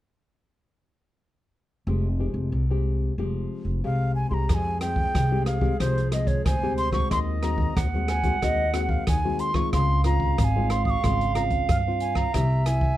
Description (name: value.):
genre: samba and choro.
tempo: 92 BPM.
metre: 4/4.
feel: straight.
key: F minor.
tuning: A4 = 440 Hz.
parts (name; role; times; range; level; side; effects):
nylon-string guitar; accompaniment; 1.9-13.0 s; Ab2 to G4; -30 LUFS; left 4 dB; none.
upright bass; bass; 1.9-12.9 s; F1 to G2; -25 LUFS; equal; none.
wooden flute; melody; 3.8-13.0 s; C5 to Eb6; -28 LUFS; equal; none.
mellow clarinet; second line; 4.5-13.0 s; Ab4 to Gb5; -30 LUFS; right 7 dB; none.
open jazz drum kit; drums; 4.5-13.0 s; hi-hat, kick drum, rim click; -27 LUFS; equal; none.
room: light reverb.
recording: dark, warm production.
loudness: -22 LUFS.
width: side -14 dB against mid.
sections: 1.9-4.5 A section; 4.5-13.0 B section.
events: none.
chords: 1.9 Fmadd9; 7.1 Ab7/Eb; 9.7 Dbmaj7; 12.3 C.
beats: | 1.87 2.53 3.18 3.84 | 4.49 5.15 5.80 6.46 | 7.11 7.76 8.42 9.07 | 9.73 10.38 11.04 11.69 | 12.34.